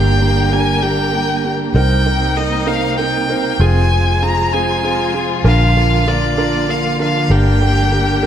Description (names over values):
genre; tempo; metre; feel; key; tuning
pop; 65 BPM (dotted quarters); 6/8; straight; C minor; A4 = 440 Hz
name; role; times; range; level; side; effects
rich violin; melody; 0.0-8.3 s; D5 to Bb5; -18 LUFS; equal; ping-pong delay
dark baby grand piano; accompaniment; 0.0-8.3 s; Bb3 to Bb4; -19 LUFS; right 3 dB; none
warm studio string section; sustained chords; 0.0-8.3 s; C3 to Bb4; -21 LUFS; left 1 dB; none
vintage muted fingered electric bass; bass; 0.0-8.3 s; F1 to C2; -16 LUFS; equal; none
room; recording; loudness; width
moderate plate reverb, RT60 2.5 s; dreamy mix soaked in reverb; -13 LUFS; side -9 dB against mid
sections
0.0-8.3 A section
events
none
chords
0.0 Gm; 1.7 Cm7; 3.6 Fm; 5.5 Bb; 7.3 Gm